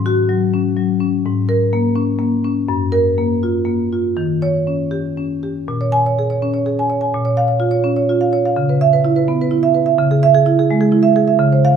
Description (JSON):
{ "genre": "classical, contemporary piece for solo marimba", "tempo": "84 BPM (dotted quarters)", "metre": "6/8", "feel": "rubato", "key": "Bb minor", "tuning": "A4 = 445 Hz", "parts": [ { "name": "marimba with medium mallets", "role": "solo", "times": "0.0-11.8 s", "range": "Gb2 to Ab5", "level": "-14 LUFS", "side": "right 1 dB", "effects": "none" } ], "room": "moderate recital hall reverb, RT60 1.7 s", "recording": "close, detailed microphones", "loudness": "-14 LUFS", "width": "side -7 dB against mid", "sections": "0.0-5.7 A section; 5.7-11.8 B section", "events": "none", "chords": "0.0 Ab7sus4; 1.2 Bbm7/Ab; 2.7 Gbmaj7; 4.2 Eb7; 5.7 Bbm7; 7.1 Db/Bb; 8.6 Dbm7; 10.0 E/Db" }